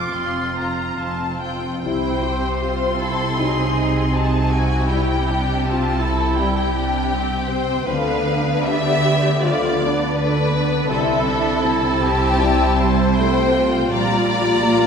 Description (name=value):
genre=classical, slow romantic movement for symphony orchestra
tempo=80 BPM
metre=4/4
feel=rubato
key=C major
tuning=A4 = 439 Hz
part: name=rich studio violin section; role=melody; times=0.0-14.9 s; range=D5 to D6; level=-26 LUFS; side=left 4 dB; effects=none
part: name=clear oboe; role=second line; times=0.0-1.4 s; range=F4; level=-27 LUFS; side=right 2 dB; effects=none
part: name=rich studio violin section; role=second line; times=0.0-14.9 s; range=F4 to E5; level=-23 LUFS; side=left 3 dB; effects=none
part: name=warm studio viola section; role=accompaniment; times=0.0-14.9 s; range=G3 to G4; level=-24 LUFS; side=right 2 dB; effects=none
part: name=concert harp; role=arpeggios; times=0.0-14.9 s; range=Bb2 to B4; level=-27 LUFS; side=left 3 dB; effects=none
part: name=rich studio cello section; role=bass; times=0.0-14.9 s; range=F2 to D3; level=-25 LUFS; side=right 3 dB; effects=none
part: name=warm studio double bass section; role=bass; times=0.1-14.9 s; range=F1 to D2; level=-25 LUFS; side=right 2 dB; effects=none
part: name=dark French horn section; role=sustained chords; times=1.8-14.9 s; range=F3 to F4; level=-27 LUFS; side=left 2 dB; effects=none
room=wet concert hall reverb, RT60 2.3 s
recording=heard from further back in the room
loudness=-17 LUFS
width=side -6 dB against mid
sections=0.0-1.8 A section; 1.8-14.9 B section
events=none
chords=0.0 F; 1.8 C; 3.4 Cdim7; 4.9 C; 7.9 Bdim/D; 10.9 C; 13.9 Gm7/Bb